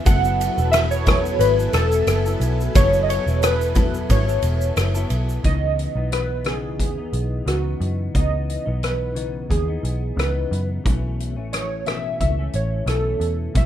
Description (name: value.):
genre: indie pop, bedroom pop.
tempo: 89 BPM.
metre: 4/4.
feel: swing 55% on 16ths.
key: C# minor.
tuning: A4 = 441 Hz.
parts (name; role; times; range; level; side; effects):
clean electric guitar; accompaniment; 0.0-13.7 s; B2 to A4; -30 LUFS; left 5 dB; ensemble chorus, warbly pitch drift.
string machine, full ensemble; sustained chords; 0.0-5.4 s; F#3 to G#5; -30 LUFS; equal; ensemble chorus.
warbly lo-fi synth keys; melody; 0.1-13.7 s; F#4 to F#5; -24 LUFS; equal; analog chorus, tape echo.
vintage muted picked electric bass; bass; 0.1-13.7 s; E1 to F#2; -22 LUFS; equal; none.
loose indie drum kit; drums; 0.1-13.7 s; hi-hat, kick drum, ride cymbal, rim click, shaker; -22 LUFS; equal; none.
room: small room ambience.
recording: rough home demo mix.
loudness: -18 LUFS.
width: side -11 dB against mid.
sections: 0.0-5.5 A section; 5.5-13.7 B section.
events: none.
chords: 0.1 F#m11; 5.5 C#m9; 10.8 B9sus4.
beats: | 0.06 0.74 1.41 2.08 | 2.76 3.43 4.11 4.78 | 5.46 6.13 6.80 7.48 | 8.15 8.83 9.50 10.18 | 10.85 11.52 12.20 12.87 | 13.55.